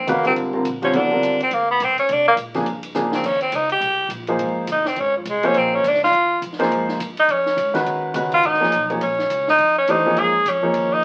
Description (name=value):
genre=modal jazz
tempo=208 BPM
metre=4/4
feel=swing 60% on 8ths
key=Eb minor from 7.9 s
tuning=A4 = 438 Hz
part: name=clear tenor saxophone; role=melody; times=0.0-11.0 s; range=F3 to Ab4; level=-20 LUFS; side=equal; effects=none
part: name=upright bass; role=bass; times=0.0-11.0 s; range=F1 to C3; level=-39 LUFS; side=equal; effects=none
part: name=warm concert grand piano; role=accompaniment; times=0.1-11.0 s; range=Db3 to Db5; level=-24 LUFS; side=equal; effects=none
part: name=compact cocktail drum kit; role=drums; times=0.1-10.8 s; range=crash cymbal, hi-hat, kick drum, ride cymbal, snare drum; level=-36 LUFS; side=equal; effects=none
room=moderate small room reverb, RT60 0.5 s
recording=very old 78 rpm record, vinyl crackle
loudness=-19 LUFS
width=mono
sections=0.0-7.9 A section; 7.9-11.0 A section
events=tenor saxophone solo 0.0-11.0; drum fill 3.0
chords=0.0 C9sus4; 3.2 Eb9sus4